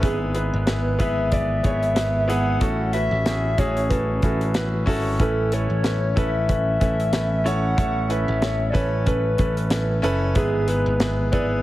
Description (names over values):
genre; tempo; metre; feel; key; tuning
piano-driven pop; 93 BPM; 4/4; swing 56% on 16ths; unclear; A4 = 439 Hz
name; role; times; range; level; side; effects
hollow clarinet-like synth lead; melody; 0.0-11.5 s; G#4 to F#5; -26 LUFS; equal; chorus, phaser
clear concert grand piano; accompaniment; 0.0-11.6 s; G#2 to D5; -25 LUFS; equal; none
modern bright picked electric bass; bass; 0.0-11.6 s; F#1 to A1; -24 LUFS; equal; none
modern studio drum kit; drums; 0.0-11.5 s; hi-hat, kick drum, snare drum; -25 LUFS; equal; none
room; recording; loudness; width
small room reverb; heavily compressed radio sound; -19 LUFS; side -15 dB against mid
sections
0.0-11.6 A section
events
none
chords
0.0 E/G#; 2.6 F#m7/A; 5.2 Aadd9; 10.4 E/G#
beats
| 0.03 0.68 1.32 1.97 | 2.61 3.26 3.90 4.55 | 5.20 5.84 6.49 7.13 | 7.78 8.42 9.07 9.71 | 10.36 11.01